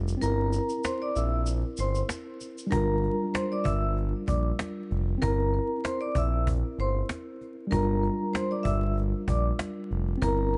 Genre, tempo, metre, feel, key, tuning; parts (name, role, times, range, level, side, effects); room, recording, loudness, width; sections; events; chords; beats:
hip hop, boom-bap hip-hop; 96 BPM; 4/4; swing 55% on 16ths; G dorian; A4 = 441 Hz
mellow tine electric piano; accompaniment; 0.0-10.6 s; G3 to Bb4; -34 LUFS; equal; cassette tape
smooth gliding synth bass; bass; 0.0-10.6 s; F1 to Bb1; -30 LUFS; equal
tube shaker; percussion; 0.1-2.7 s; -46 LUFS; equal
vibraphone with medium mallets; melody; 0.2-10.6 s; Bb4 to E6; -34 LUFS; equal
cajon; drums; 0.2-10.6 s; -34 LUFS; equal
small room ambience; dark, warm production, vinyl crackle, nothing above 10.8 kHz; -28 LUFS; mono
0.0-2.7 A section; 2.7-10.6 A section
kick muted 0.2-2.7
0.2 C7/G; 2.7 Gm7; 5.2 C7/G; 7.7 Gm7
| 0.22 0.85 1.47 2.10 | 2.72 3.35 3.97 4.60 | 5.22 5.85 6.47 7.10 | 7.72 8.35 8.97 9.60 | 10.22